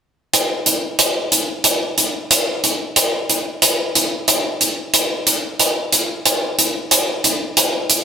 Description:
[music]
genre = rock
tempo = 91 BPM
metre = 4/4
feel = straight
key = none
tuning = none
[part]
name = hi-hat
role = drums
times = 0.3-8.0 s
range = none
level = -14 LUFS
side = equal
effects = none
[sound]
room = little or no reverb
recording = none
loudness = -14 LUFS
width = side -6 dB against mid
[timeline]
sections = 0.3-8.0 A section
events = none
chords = none

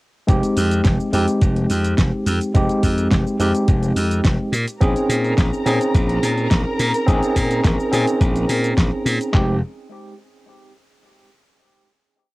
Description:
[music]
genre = nu-disco, nu disco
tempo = 106 BPM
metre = 4/4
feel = straight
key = F minor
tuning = A4 = 439 Hz
[part]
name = tine electric piano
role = accompaniment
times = 0.3-9.6 s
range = Ab3 to Ab4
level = -20 LUFS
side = equal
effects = medium stereo tremolo, sidechain pumping, tape echo
[part]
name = glassy slap bass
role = bass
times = 0.3-9.6 s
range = F1 to Bb2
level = -20 LUFS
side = equal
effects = none
[part]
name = dusty soul sampler-style drum kit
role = drums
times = 0.3-9.5 s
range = handclaps, kick drum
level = -18 LUFS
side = equal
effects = cassette tape
[part]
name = pop drum kit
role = drums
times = 0.3-9.3 s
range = cabasa, hi-hat, snare drum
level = -26 LUFS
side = equal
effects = cassette tape
[part]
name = dark studio string section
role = sustained chords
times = 4.8-9.4 s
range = Bb4 to Bb5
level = -27 LUFS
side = equal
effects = sidechain pumping
[sound]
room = light reverb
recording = home recording on cassette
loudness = -16 LUFS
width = side -21 dB against mid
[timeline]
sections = 0.3-9.3 groove; 9.3-11.6 final chord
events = none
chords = 0.3 Fm9; 4.5 Bbm11; 9.3 Fm9

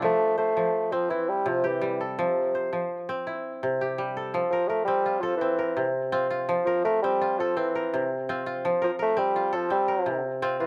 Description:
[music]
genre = west african traditional, West African string and xylophone music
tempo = 112 BPM (dotted quarters)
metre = 12/8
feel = straight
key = F major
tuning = A4 = 441 Hz
[part]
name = mellow bassoon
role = melody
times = 0.0-10.7 s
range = C3 to A3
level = -28 LUFS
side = equal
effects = none
[part]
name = kora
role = arpeggios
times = 0.0-10.7 s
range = C3 to C5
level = -30 LUFS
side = equal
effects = slapback echo
[sound]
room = little or no reverb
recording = recorded outdoors, with no room sound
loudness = -26 LUFS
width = mono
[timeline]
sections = 0.0-4.3 A section; 4.3-10.7 B section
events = bassoon solo 4.3-10.7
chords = 0.0 F; 1.1 C; 2.2 F; 3.3 C; 4.3 F; 5.4 C; 6.5 F; 7.6 C; 8.6 F; 9.7 C5

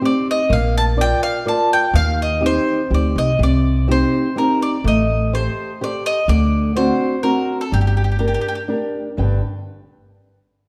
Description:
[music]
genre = italian folk, Italian serenade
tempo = 125 BPM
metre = 3/4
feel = straight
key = G minor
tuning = A4 = 441 Hz
[part]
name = flamenco guitar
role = accompaniment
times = 0.0-9.4 s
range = G2 to G5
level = -23 LUFS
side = equal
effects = none
[part]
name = bowl-back mandolin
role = melody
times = 0.1-8.6 s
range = G4 to A5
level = -23 LUFS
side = equal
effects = none
[part]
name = upright bass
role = bass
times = 0.5-9.4 s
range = G1 to Eb2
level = -20 LUFS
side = equal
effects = none
[sound]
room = wet recital hall reverb, RT60 1.6 s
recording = dark, warm production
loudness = -18 LUFS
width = mono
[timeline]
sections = 0.0-9.2 A section; 9.2-10.6 B section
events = none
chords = 0.0 Eb6; 0.5 Bb; 1.9 Eb6; 3.4 Cm; 4.8 Am7b5; 6.3 D7; 7.7 Gm; 9.2 G

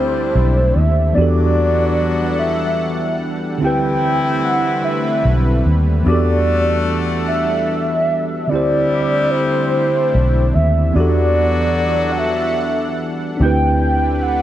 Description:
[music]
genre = slow six-eight R&B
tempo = 49 BPM (dotted quarters)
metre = 6/8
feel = straight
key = E minor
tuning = A4 = 439 Hz
[part]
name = warm velvety synth lead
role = melody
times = 0.0-14.4 s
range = C5 to G5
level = -19 LUFS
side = equal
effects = chorus
[part]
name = mellow tine electric piano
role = accompaniment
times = 0.0-14.4 s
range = D3 to C5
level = -20 LUFS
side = right 1 dB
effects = medium stereo tremolo
[part]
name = lush unison pad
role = sustained chords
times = 0.0-14.4 s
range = D3 to F#5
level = -25 LUFS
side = equal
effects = chorus
[part]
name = clear horn section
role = stabs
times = 0.0-13.0 s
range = E3 to A4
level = -25 LUFS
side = left 3 dB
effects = none
[part]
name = vintage muted fingered electric bass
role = bass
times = 0.0-14.4 s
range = B1 to E2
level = -17 LUFS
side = equal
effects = none
[sound]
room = light reverb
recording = none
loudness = -14 LUFS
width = side -12 dB against mid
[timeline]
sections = 0.0-14.4 A section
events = none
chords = 0.0 D13sus4; 1.2 Em11; 3.6 D13sus4; 6.1 Em11; 8.5 D13sus4; 11.0 Em11; 13.4 D13sus4

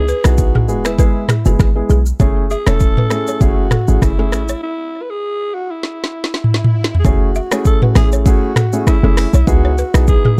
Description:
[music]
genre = afrobeats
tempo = 99 BPM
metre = 4/4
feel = swing 55% on 16ths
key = unclear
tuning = A4 = 440 Hz
[part]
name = breathy alto saxophone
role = melody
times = 0.0-10.4 s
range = E4 to B4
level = -25 LUFS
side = equal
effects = plate reverb, delay
[part]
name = balafon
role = riff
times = 0.0-10.3 s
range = F#4 to E5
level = -27 LUFS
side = equal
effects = none
[part]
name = short 808-style bass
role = bass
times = 0.0-10.2 s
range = E1 to C#2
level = -17 LUFS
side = equal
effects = none
[part]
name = afro-pop drum kit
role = drums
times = 0.1-10.4 s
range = finger snaps, hi-hat, kick drum, rim click, shaker, snare drum, toms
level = -17 LUFS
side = equal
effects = none
[part]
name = dark concert grand piano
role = accompaniment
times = 0.2-10.3 s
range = G#3 to A4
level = -23 LUFS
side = equal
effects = plate reverb
[part]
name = swell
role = sound effects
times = 6.2-7.0 s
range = none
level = -34 LUFS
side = equal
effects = none
[sound]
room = light reverb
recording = dark, warm production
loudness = -15 LUFS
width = mono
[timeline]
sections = 0.0-7.0 A section; 7.0-10.4 B section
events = break 4.6-7.0; drum fill 5.8-7.0; swell 6.2-7.0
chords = 0.0 C#m7; 0.7 E; 2.2 F#m7; 4.6 N.C.; 7.0 F#m7; 9.5 C#m7

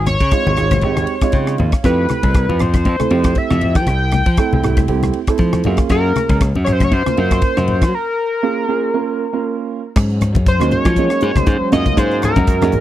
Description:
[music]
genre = electric jazz fusion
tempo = 118 BPM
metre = 4/4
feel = swing 55% on 16ths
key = unclear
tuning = A4 = 436 Hz
[part]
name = octave-doubled lead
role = melody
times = 0.0-12.8 s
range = Bb4 to G5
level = -20 LUFS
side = left 1 dB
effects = chorus
[part]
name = glassy slap bass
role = bass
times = 0.0-12.8 s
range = Ab1 to Gb3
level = -17 LUFS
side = equal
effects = none
[part]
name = crisp fusion drum kit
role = drums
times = 0.1-12.8 s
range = crash cymbal, hi-hat, kick drum, ride cymbal, rim click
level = -17 LUFS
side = equal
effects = none
[part]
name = congas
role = percussion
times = 0.1-12.8 s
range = none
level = -22 LUFS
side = left 3 dB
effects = none
[part]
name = warm grand piano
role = accompaniment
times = 0.3-12.8 s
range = C3 to G5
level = -20 LUFS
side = right 9 dB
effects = none
[part]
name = brassy analog pad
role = sustained chords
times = 9.9-12.8 s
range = Gb3 to Db4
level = -24 LUFS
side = left 1 dB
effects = chorus
[sound]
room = little or no reverb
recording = dry, close 1970s-style studio recording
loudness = -13 LUFS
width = side -13 dB against mid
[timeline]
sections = 0.0-10.0 A section; 10.0-12.8 B section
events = grand piano fill 1.1-1.9; break 7.9-10.0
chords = 0.0 Dbmaj9; 1.9 Fmaj9; 5.7 Gbmaj9; 10.0 Ab9sus4

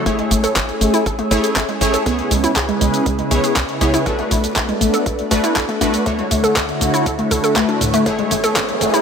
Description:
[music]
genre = progressive house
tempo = 120 BPM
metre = 4/4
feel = straight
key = A major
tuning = A4 = 435 Hz
[part]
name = lush unison pad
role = sustained chords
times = 0.0-9.0 s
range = C#3 to C#5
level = -22 LUFS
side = equal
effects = chorus, phaser, sidechain pumping
[part]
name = supersaw stab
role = stabs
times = 0.0-9.0 s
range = A3 to C#5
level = -22 LUFS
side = equal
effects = lush chorus, sidechain pumping, ping-pong delay
[part]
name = glassy wavetable pluck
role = arpeggios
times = 0.1-9.0 s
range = A2 to A4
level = -20 LUFS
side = equal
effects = chorus, cassette tape, sidechain pumping, ping-pong delay
[part]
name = tight sequencer bass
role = bass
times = 0.1-8.9 s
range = A1 to D2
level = -22 LUFS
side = equal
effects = sidechain pumping
[part]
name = deep house drum kit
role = drums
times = 0.1-9.0 s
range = handclaps, hi-hat, shaker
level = -22 LUFS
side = right 1 dB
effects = none
[part]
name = electronic kick drum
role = drums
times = 0.1-8.7 s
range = none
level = -28 LUFS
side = equal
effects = none
[part]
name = riser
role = sound effects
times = 8.3-9.0 s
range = none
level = -23 LUFS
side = equal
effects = none
[sound]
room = moderate lush hall reverb, RT60 2.1 s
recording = high-pass filter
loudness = -15 LUFS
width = side -6 dB against mid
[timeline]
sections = 0.1-9.0 A section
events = build-up 0.1-9.0; riser 8.3-9.0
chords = 0.1 Amaj7; 2.1 C#m7; 4.1 Bm7; 6.1 Dmaj7; 8.1 Amaj7

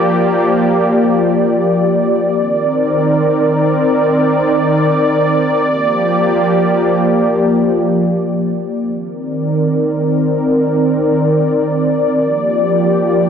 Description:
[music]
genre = hip hop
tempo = free time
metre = none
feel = none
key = C minor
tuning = A4 = 440 Hz
[part]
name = warm analog pad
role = solo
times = 0.0-13.3 s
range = Eb3 to D5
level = -12 LUFS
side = equal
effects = chorus
[sound]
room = moderate huge ambient reverb, RT60 4.7 s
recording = dark, warm production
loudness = -12 LUFS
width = side -7 dB against mid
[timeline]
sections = 0.0-8.9 A section; 8.9-13.3 B section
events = none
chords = 0.0 Gm7; 2.4 Cm9; 5.6 Gm7; 8.9 Cm9; 12.2 Gm7

